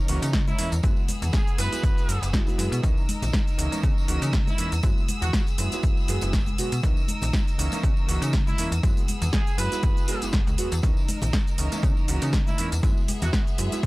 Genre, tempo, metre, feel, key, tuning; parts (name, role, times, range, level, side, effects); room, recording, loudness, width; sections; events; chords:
filtered disco house; 120 BPM; 4/4; swing 55% on 16ths; C# dorian; A4 = 439 Hz
clear concert grand piano; accompaniment; 0.0-13.9 s; E3 to G#4; -32 LUFS; right 2 dB; phaser, sidechain pumping
clear studio violin section; sustained chords; 0.0-13.9 s; B3 to E6; -35 LUFS; equal; sidechain pumping
slap-like FM bass; bass; 0.1-13.9 s; F#1 to C#3; -27 LUFS; equal; sidechain pumping
punchy analog drum machine; drums; 0.1-13.9 s; hi-hat, shaker, snare drum; -31 LUFS; equal; overdrive, sidechain pumping on hats, sidechain pumping on cymbals, sidechain pumping on perc
tambourine and congas; percussion; 0.2-13.8 s; -36 LUFS; left 3 dB; sidechain pumping on perc
electronic kick drum; drums; 0.3-13.9 s; -23 LUFS; equal; overdrive
clear horn section; melody; 0.5-5.4, 8.5-13.4 s; E4 to B4; -34 LUFS; right 2 dB; sidechain pumping
studio ambience; dry, gritty hardware recording; -21 LUFS; side -20 dB against mid
0.0-13.9 A section
0.0 C#m69; 0.8 F#9sus4; 2.8 C#m69; 4.8 F#9sus4; 6.8 C#m69; 8.8 F#9sus4; 10.8 C#m69; 12.8 F#9sus4